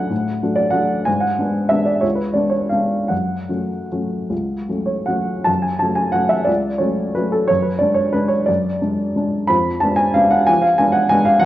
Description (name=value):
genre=classical, piano waltz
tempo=145-199 BPM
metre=3/4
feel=rubato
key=F# minor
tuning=A4 = 436 Hz
part: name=warm upright piano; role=solo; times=0.0-11.5 s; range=C#2 to Cb6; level=-16 LUFS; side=equal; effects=none
room=wet recital hall reverb, RT60 1.7 s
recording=worn, warbling old tape, cassette tape, warbly pitch drift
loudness=-16 LUFS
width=side -14 dB against mid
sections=0.0-5.5 A section; 5.5-11.5 A section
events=none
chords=0.0 D; 1.1 G#m7b5; 2.0 C#7b9; 3.1 F#m; 7.5 Bm69/F#; 9.5 Fdim7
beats=| 0.11 0.42 0.74 | 1.07 1.39 1.72 | 2.04 2.36 2.72 | 3.10 3.51 3.92 | 4.31 4.68 5.08 | 5.48 5.82 6.16 | 6.49 6.82 7.16 | 7.49 7.82 8.15 | 8.49 8.81 9.15 | 9.49 9.82 10.16 | 10.48 10.79 11.11 | 11.42